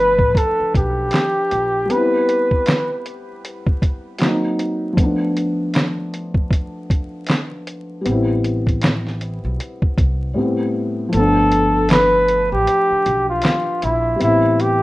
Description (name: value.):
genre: lo-fi hip hop.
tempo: 78 BPM.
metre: 4/4.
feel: swing 60% on 16ths.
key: unclear.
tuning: A4 = 440 Hz.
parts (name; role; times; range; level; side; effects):
trumpet with bucket mute; melody; 0.0-3.1, 11.1-14.8 s; E4 to B4; -16 LUFS; equal; low-pass filter, tape echo.
felt-muted upright piano; accompaniment; 0.0-14.8 s; A2 to E4; -22 LUFS; left 1 dB; low-pass filter.
upright bass; bass; 0.0-1.9, 8.1-14.8 s; G1 to C2; -22 LUFS; equal; none.
lo-fi sampler-style drum kit; drums; 0.2-14.8 s; handclaps, hi-hat, kick drum, snare drum; -18 LUFS; equal; none.
room: wet studio reverb, RT60 0.6 s.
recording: rough home demo mix, vinyl crackle, nothing above 10.8 kHz.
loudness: -16 LUFS.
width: side -18 dB against mid.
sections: 0.0-11.1 A section; 11.1-14.8 B section.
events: break 1.9-8.0; kick muted 11.1-14.8.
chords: 0.0 G9; 1.9 Cmaj7/G; 4.2 D#m6/F#; 5.0 Bm7b5/F; 8.0 Am9; 11.1 G9; 14.2 Am9.